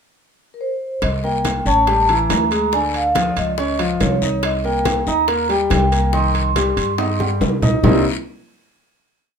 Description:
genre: Afro-Cuban jazz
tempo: 141 BPM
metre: 4/4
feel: straight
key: C minor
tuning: A4 = 444 Hz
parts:
  - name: vibraphone with soft mallets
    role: melody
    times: 0.5-7.4 s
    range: Bb4 to C6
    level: -20 LUFS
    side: right 1 dB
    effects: none
  - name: upright bass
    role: bass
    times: 1.0-8.0 s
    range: A1 to G2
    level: -22 LUFS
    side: equal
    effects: none
  - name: bongos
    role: percussion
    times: 1.0-7.9 s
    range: none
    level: -27 LUFS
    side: left 9 dB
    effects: none
  - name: congas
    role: percussion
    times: 1.0-7.9 s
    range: none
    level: -22 LUFS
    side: equal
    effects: none
  - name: guiro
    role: percussion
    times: 1.0-7.9 s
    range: none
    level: -32 LUFS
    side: left 7 dB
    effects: none
  - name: timbales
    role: percussion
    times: 1.0-7.9 s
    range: none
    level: -25 LUFS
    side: right 6 dB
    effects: none
  - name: clear concert grand piano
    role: accompaniment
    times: 1.2-8.0 s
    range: C3 to Eb5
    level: -21 LUFS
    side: left 1 dB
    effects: none
room: moderate studio ambience, RT60 0.5 s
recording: minimal, uncompressed stereo recording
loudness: -15 LUFS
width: side -6 dB against mid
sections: 0.0-1.0 pickup bar; 1.0-7.8 A section; 7.8-9.4 final chord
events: drum fill 7.0-7.8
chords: 0.0 N.C.; 1.0 C5; 1.9 A5; 2.7 Ddim; 3.6 Dbadd9; 4.4 Cm7; 7.8 Cm9

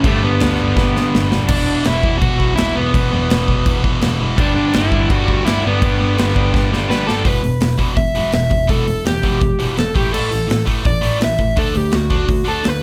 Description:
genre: punk rock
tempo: 166 BPM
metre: 4/4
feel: straight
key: E minor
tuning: A4 = 440 Hz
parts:
  - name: overdriven semi-hollow guitar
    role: melody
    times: 0.0-12.8 s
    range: A3 to E5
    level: -22 LUFS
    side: equal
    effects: none
  - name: distorted electric guitar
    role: riff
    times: 0.0-12.8 s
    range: E2 to D4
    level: -24 LUFS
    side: equal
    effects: overdrive
  - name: distorted electric guitar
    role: riff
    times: 0.0-1.5, 4.4-7.2 s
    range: G2 to G4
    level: -25 LUFS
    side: equal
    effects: distortion
  - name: muted double bass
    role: bass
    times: 0.0-12.8 s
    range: E1 to D2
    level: -23 LUFS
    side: equal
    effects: none
  - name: big rock drum kit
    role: drums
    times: 0.0-12.7 s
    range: crash cymbal, hi-hat, kick drum, snare drum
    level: -21 LUFS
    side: equal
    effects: none
room: studio ambience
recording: none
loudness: -16 LUFS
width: mono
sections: 0.0-1.5 A section; 1.5-7.3 B section; 7.3-12.8 C section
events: drum fill 0.8-1.5, 6.5-7.3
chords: 0.1 G; 1.5 E5; 4.4 G; 7.3 Em; 10.0 A5; 11.6 D

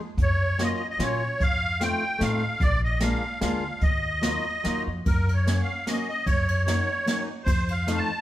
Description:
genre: musette waltz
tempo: 149 BPM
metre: 3/4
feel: swing 53% on 8ths, rubato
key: Eb minor, F# major from 5.1 s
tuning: A4 = 440 Hz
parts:
  - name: musette accordion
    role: melody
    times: 0.2-8.2 s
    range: A#4 to A5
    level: -27 LUFS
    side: equal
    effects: none
  - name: upright bass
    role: bass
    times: 0.2-8.0 s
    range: Bb1 to Bb2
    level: -27 LUFS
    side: equal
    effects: none
  - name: jazz brush drum kit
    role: drums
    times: 0.2-8.0 s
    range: hi-hat, kick drum, ride cymbal, snare drum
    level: -28 LUFS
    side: equal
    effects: none
  - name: fingerpicked plugged-in steel-string acoustic guitar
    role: accompaniment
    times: 0.6-8.1 s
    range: F3 to F#4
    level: -30 LUFS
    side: left 1 dB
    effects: none
room: moderate stone room reverb, RT60 1.3 s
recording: band playing live in one room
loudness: -22 LUFS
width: side -14 dB against mid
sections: 0.0-5.1 A section; 5.1-8.2 B section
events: none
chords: 0.2 Gbmaj7; 1.4 F7; 2.6 Bb7; 3.8 Ebmadd9; 5.1 F#; 6.3 D#m7/F#; 7.5 F7

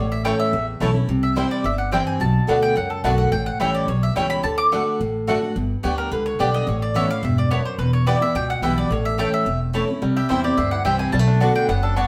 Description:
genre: bluegrass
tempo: 215 BPM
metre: 4/4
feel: straight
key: unclear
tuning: A4 = 440 Hz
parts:
  - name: mandolin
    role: melody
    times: 0.0-12.1 s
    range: A4 to D6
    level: -27 LUFS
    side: equal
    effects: none
  - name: picked steel-string acoustic guitar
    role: accompaniment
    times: 0.0-12.1 s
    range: E2 to G4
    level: -25 LUFS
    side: equal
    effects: none
  - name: upright bass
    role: bass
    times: 0.0-12.0 s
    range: E1 to E2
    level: -25 LUFS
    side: equal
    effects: none
  - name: mandolin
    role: stabs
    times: 0.2-12.1 s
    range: A3 to A5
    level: -28 LUFS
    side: equal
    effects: none
  - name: bluegrass banjo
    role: melody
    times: 0.3-5.3, 10.0-12.1 s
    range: G3 to G4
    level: -33 LUFS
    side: equal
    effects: none
room: moderate stone room reverb, RT60 1.0 s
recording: band playing live in one room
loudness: -21 LUFS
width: mono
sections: 0.0-5.6 A section; 5.6-12.1 A section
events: none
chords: 0.0 A; 1.1 C; 2.2 Bm7; 3.3 A7; 4.4 D; 5.6 G; 6.7 Aadd9; 7.8 Em; 8.9 A; 10.0 C; 11.1 Bm7

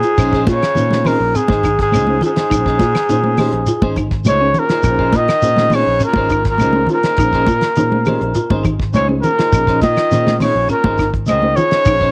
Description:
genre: afrobeat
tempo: 103 BPM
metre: 4/4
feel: straight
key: Bb minor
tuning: A4 = 440 Hz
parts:
  - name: breathy trumpet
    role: melody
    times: 0.0-12.1 s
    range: Ab4 to Eb5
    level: -18 LUFS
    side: equal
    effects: cassette tape
  - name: raspy baritone saxophone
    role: second line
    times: 0.0-12.1 s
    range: Ab2 to Eb3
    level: -30 LUFS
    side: equal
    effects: cassette tape, plate reverb
  - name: marimba with medium mallets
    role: arpeggios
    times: 0.0-11.9 s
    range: C4 to G4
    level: -26 LUFS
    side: equal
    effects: cassette tape, analog delay
  - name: clean electric guitar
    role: stabs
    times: 0.0-12.1 s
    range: Db4 to C5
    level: -28 LUFS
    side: equal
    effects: spring reverb, cassette tape
  - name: fingered electric bass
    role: bass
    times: 0.0-12.1 s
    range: Ab1 to Bb2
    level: -23 LUFS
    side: equal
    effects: none
  - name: damped 70s drum kit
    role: drums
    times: 0.0-12.1 s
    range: crash cymbal, hi-hat, kick drum, snare drum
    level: -22 LUFS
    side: equal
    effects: cassette tape
  - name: shekere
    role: percussion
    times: 0.0-12.0 s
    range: none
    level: -24 LUFS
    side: equal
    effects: none
  - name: reed electric piano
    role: accompaniment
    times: 0.2-12.1 s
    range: Db4 to Eb5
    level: -26 LUFS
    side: equal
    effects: fast tremolo, cassette tape
  - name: claves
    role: percussion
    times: 0.2-12.0 s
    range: none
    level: -32 LUFS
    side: equal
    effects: none
  - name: congas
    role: percussion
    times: 0.2-12.0 s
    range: none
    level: -22 LUFS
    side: equal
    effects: none
room: light reverb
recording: home recording on cassette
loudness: -15 LUFS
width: mono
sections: 0.2-12.1 A section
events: none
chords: 0.2 Bbm11

